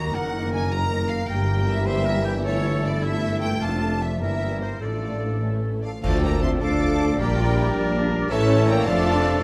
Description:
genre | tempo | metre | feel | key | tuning
classical, dramatic, fast romantic movement for symphony orchestra | 97-108 BPM (dotted quarters) | 6/8 | straight | D minor | A4 = 440 Hz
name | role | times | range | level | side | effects
bright symphonic violin section | melody | 0.0-9.4 s | C5 to D6 | -36 LUFS | equal | none
bright small flute group | second line | 0.0-9.4 s | A4 to Bb5 | -35 LUFS | equal | none
clear oboe | second line | 0.0-9.4 s | E4 to D5 | -35 LUFS | equal | none
warm symphonic violin section | second line | 0.0-9.4 s | Eb4 to A5 | -38 LUFS | equal | none
warm symphonic viola section | accompaniment | 0.0-9.4 s | Eb3 to Bb4 | -34 LUFS | equal | none
mellow French horn section | sustained chords | 0.0-9.4 s | F3 to Bb4 | -32 LUFS | equal | none
mellow trombone section | sustained chords | 0.0-9.4 s | Eb3 to D4 | -34 LUFS | equal | none
dark symphonic cello section | bass | 0.0-9.4 s | F2 to A4 | -33 LUFS | equal | none
mellow tuba | bass | 0.0-9.4 s | F1 to Eb2 | -31 LUFS | equal | none
warm studio double bass section | bass | 0.0-9.4 s | F1 to D2 | -29 LUFS | equal | none
mellow bassoon | accompaniment | 6.0-9.4 s | E3 to G3 | -33 LUFS | equal | none
clear trumpet | stabs | 6.0-9.4 s | A4 to Bb4 | -33 LUFS | equal | none
clash cymbals and concert bass drum | percussion | 6.0-6.8 s | none | -32 LUFS | equal | none
room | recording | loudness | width
moderate recital hall reverb, RT60 1.4 s | none | -23 LUFS | mono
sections
0.0-6.0 A section; 6.0-9.4 B section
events
band accent 6.0-6.4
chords
0.1 Ebm/Gb; 1.3 Edim/G; 2.4 A7/G; 3.6 Dm/F; 4.2 Edim/G; 4.8 Dm/A; 5.4 A; 6.0 Dm; 7.2 Gm/Bb; 8.3 A; 8.9 Dm/F

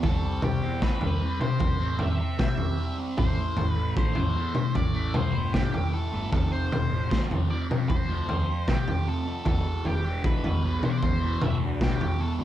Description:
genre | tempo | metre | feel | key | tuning
psychedelic rock | 76 BPM | 4/4 | straight | E phrygian | A4 = 440 Hz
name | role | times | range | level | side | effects
octave-fuzz lead guitar | melody | 0.0-12.3 s | G4 to E5 | -34 LUFS | left 1 dB | distortion
fuzz guitar | riff | 0.0-12.4 s | E2 to C4 | -33 LUFS | right 2 dB | distortion, phaser
fuzz picked electric bass | bass | 0.0-12.4 s | E1 to C3 | -33 LUFS | equal | overdrive
crunchy breakbeat drum kit | drums | 0.0-12.2 s | kick drum, snare drum, toms | -25 LUFS | equal | none
room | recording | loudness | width
light reverb | band playing live in one room | -24 LUFS | side -12 dB against mid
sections
0.0-12.4 A section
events
none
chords
0.0 C; 3.2 Am; 6.3 F5; 9.5 Em

